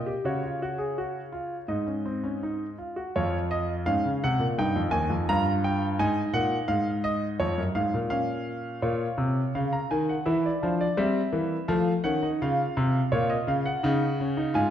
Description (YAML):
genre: classical, baroque-style 3-part fugue for grand piano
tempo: 84 BPM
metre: 4/4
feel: straight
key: Db major, Bb minor from 8.8 s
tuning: A4 = 440 Hz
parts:
  - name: clear grand piano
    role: solo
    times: 0.0-14.7 s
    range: Eb2 to Bb5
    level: -24 LUFS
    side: equal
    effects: none
room: wet recital hall reverb, RT60 1.5 s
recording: dark, warm production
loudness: -24 LUFS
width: side -10 dB against mid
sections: 0.0-3.1 A section; 3.1-8.8 B section; 8.8-14.7 C section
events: none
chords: 0.2 Absus4/Db; 1.7 Ab; 3.1 Db/F; 4.6 Eb; 6.0 Ab5; 7.4 Db/F; 8.8 Bbm; 10.3 C7/E; 11.7 F7; 13.1 Bbm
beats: | 0.25 0.97 1.70 2.42 | 3.15 3.86 4.57 5.27 | 5.97 6.68 7.39 8.11 | 8.83 9.55 10.27 10.98 | 11.69 12.40 13.12 13.83 | 14.54